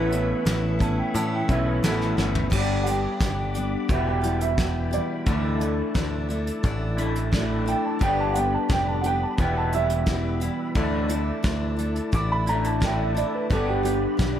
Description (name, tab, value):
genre	folk rock and heartland rock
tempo	87 BPM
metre	4/4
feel	straight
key	unclear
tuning	A4 = 441 Hz
part	electric slide guitar	melody	0.0-1.8 s	B4	-32 LUFS	right 3 dB	none
part	picked steel-string acoustic guitar	accompaniment	0.0-14.4 s	E2 to G4	-30 LUFS	left 3 dB	none
part	tonewheel organ	sustained chords	0.0-14.4 s	E4 to D6	-36 LUFS	equal	slow rotary speaker, chorus vibrato
part	electric guitar through a small old amp	riff	0.0-14.4 s	E2 to G4	-28 LUFS	left 1 dB	analog chorus
part	picked electric bass	bass	0.0-14.4 s	E1 to A2	-27 LUFS	equal	none
part	soft brush drum kit	drums	0.1-14.4 s	crash cymbal, hi-hat, kick drum, snare drum, toms	-27 LUFS	equal	none
part	dark upright piano	second line	0.8-14.4 s	G4 to D6	-28 LUFS	right 4 dB	none
room	light reverb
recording	none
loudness	-22 LUFS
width	side -10 dB against mid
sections	0.0-2.5 A section; 2.5-14.4 B section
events	drum fill 2.2-2.5; upright piano solo 2.5-14.4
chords	0.0 Aadd9; 2.5 G; 3.9 Em; 5.3 Dsus2; 8.0 G; 9.4 Em; 10.8 Dsus2; 13.5 G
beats	0.46 1.15 1.83 | 2.52 3.20 3.89 4.58 | 5.26 5.95 6.64 7.32 | 8.01 8.70 9.38 10.07 | 10.76 11.45 12.13 12.82 | 13.51 14.20